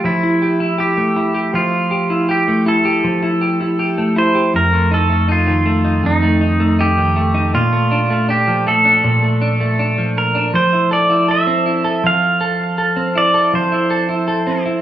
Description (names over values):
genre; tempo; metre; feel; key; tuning
dream pop; 80 BPM; 4/4; straight; F major; A4 = 440 Hz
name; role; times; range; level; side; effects
pedal steel guitar; melody; 0.0-14.6 s; Eb4 to F5; -17 LUFS; right 1 dB; plate reverb, digital delay
semi-hollow electric guitar; arpeggios; 0.0-14.8 s; F2 to A4; -16 LUFS; equal; lush chorus, digital delay
room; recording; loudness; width
moderate studio reverb, RT60 0.5 s; rough home demo mix, small room ambience; -13 LUFS; side -11 dB against mid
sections
0.0-14.8 A section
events
none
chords
0.0 Fmaj9; 4.5 F7; 7.5 Bbmaj7; 10.5 Fmaj7